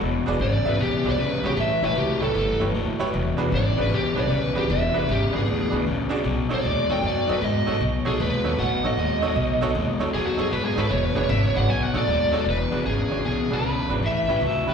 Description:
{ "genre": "electric blues shuffle", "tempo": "154 BPM", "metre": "4/4", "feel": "swing 66% on 8ths", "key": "unclear", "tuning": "A4 = 440 Hz", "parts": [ { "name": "crunchy overdriven guitar", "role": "riff", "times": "0.0-14.7 s", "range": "E2 to G#3", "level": "-26 LUFS", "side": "left 5 dB", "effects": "slapback echo" }, { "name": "upright bass", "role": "bass", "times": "0.0-14.7 s", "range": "E1 to G#2", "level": "-26 LUFS", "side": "right 1 dB", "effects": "none" }, { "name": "bright upright piano", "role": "accompaniment", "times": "0.3-14.7 s", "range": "C#4 to E5", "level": "-30 LUFS", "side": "right 6 dB", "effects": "slapback echo" }, { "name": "lead guitar through a small cranked amp", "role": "melody", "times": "0.4-14.4 s", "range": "F#4 to G#5", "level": "-25 LUFS", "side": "right 1 dB", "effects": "overdrive, slapback echo" }, { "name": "mellow harmonica", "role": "second line", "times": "14.4-14.7 s", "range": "B4 to E5", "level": "-33 LUFS", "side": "right 1 dB", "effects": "overdrive, slapback echo" } ], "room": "light reverb", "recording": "live gig heard through the venue's PA, recital hall reverb", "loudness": "-20 LUFS", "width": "side -6 dB against mid", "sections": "0.0-12.5 A section; 12.5-14.7 B section", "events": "lead electric guitar solo 0.0-12.5", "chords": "0.0 E9; 1.6 A9; 3.1 E9; 6.2 B9; 10.9 E9; 11.7 B9; 12.5 E9; 14.0 A9" }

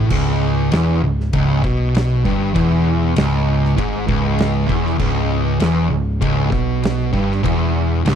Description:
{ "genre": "stoner and doom metal", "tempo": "98 BPM", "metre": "4/4", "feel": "straight", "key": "C# minor", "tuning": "A4 = 440 Hz", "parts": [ { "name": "fuzz guitar", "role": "riff", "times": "0.0-8.2 s", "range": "C#2 to B2", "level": "-17 LUFS", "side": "equal", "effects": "distortion" }, { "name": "overdriven picked electric bass", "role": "bass", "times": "0.0-8.2 s", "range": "C#1 to B1", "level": "-21 LUFS", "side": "equal", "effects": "none" }, { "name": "oversized low-tuned drum kit", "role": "drums", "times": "0.1-8.2 s", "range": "crash cymbal, kick drum, ride cymbal, snare drum", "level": "-23 LUFS", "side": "equal", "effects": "none" } ], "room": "little or no reverb", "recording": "dry, close 1970s-style studio recording", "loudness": "-15 LUFS", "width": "side -8 dB against mid", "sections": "0.1-8.2 A section", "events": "none", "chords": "0.1 C#m" }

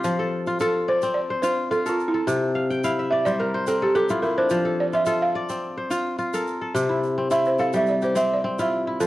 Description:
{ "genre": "west african traditional, West African string and xylophone music", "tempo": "107 BPM", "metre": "4/4", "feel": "straight", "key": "F major", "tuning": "A4 = 440 Hz", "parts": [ { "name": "kora", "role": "arpeggios", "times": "0.0-9.1 s", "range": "C3 to G5", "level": "-23 LUFS", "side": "left 1 dB", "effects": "none" }, { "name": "tube shaker", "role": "percussion", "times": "0.0-9.1 s", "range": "none", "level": "-43 LUFS", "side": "right 8 dB", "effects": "none" }, { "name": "balafon", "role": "melody", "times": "0.6-9.1 s", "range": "E4 to F5", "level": "-23 LUFS", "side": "right 1 dB", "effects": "none" } ], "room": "moderate recital hall reverb, RT60 1.5 s", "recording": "worn, warbling old tape, cassette tape, warbly pitch drift", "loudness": "-20 LUFS", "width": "side -16 dB against mid", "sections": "0.0-9.0 A section", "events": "balafon solo 0.0-9.0; kora fill 2.6-4.5", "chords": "0.0 F; 2.3 C; 4.5 F; 6.8 C" }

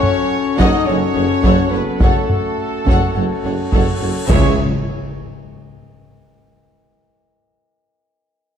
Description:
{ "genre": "cinematic, epic orchestral film score", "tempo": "106 BPM", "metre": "4/4", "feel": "straight", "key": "unclear", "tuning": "A4 = 440 Hz", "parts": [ { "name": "warm symphonic violin section", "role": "second line", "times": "0.0-4.6 s", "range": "A4 to D#5", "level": "-28 LUFS", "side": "equal", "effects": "none" }, { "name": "chamber organ, principal", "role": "sustained chords", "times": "0.0-4.6 s", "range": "C#4 to C#5", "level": "-24 LUFS", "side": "left 1 dB", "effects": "none" }, { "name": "mellow French horn section", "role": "sustained chords", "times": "0.0-4.5 s", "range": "A3 to D#4", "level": "-22 LUFS", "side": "left 7 dB", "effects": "none" }, { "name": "warm trumpet section", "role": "stabs", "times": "0.0-4.5 s", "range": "A4 to D#5", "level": "-26 LUFS", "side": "equal", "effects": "none" }, { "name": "solo taiko drums", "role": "drums", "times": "0.0-5.4 s", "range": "none", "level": "-18 LUFS", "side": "equal", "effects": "none" }, { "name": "clear symphonic violin section", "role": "melody", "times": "0.6-4.6 s", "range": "E5 to F#5", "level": "-26 LUFS", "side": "left 6 dB", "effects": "none" }, { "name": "clear symphonic viola section", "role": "accompaniment", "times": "0.6-4.6 s", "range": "G#4 to C#5", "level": "-28 LUFS", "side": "right 1 dB", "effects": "none" }, { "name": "clear tuba", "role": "bass", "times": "0.6-4.5 s", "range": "F#1 to C#2", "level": "-25 LUFS", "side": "right 5 dB", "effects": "none" }, { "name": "rich symphonic cello section", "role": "bass", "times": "0.6-4.6 s", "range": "C#2 to F#2", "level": "-23 LUFS", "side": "right 4 dB", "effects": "none" }, { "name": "rich symphonic double bass section", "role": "bass", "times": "0.6-4.6 s", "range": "F#1 to C#2", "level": "-23 LUFS", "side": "right 3 dB", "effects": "none" }, { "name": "cymbal swell and impact", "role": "sound effects", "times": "3.8-6.5 s", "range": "none", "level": "-26 LUFS", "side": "equal", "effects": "none" }, { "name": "timpani", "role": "percussion", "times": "4.3-4.6 s", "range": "C#3", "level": "-23 LUFS", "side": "left 2 dB", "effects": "none" } ], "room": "moderate scoring stage reverb, RT60 1.9 s", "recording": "dark, warm production", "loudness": "-14 LUFS", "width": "side -8 dB against mid", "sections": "0.0-4.3 A section; 4.3-6.5 B section", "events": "cymbal swell 3.8-4.3; impact 4.3-6.5", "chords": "0.0 F#m; 4.3 C#m" }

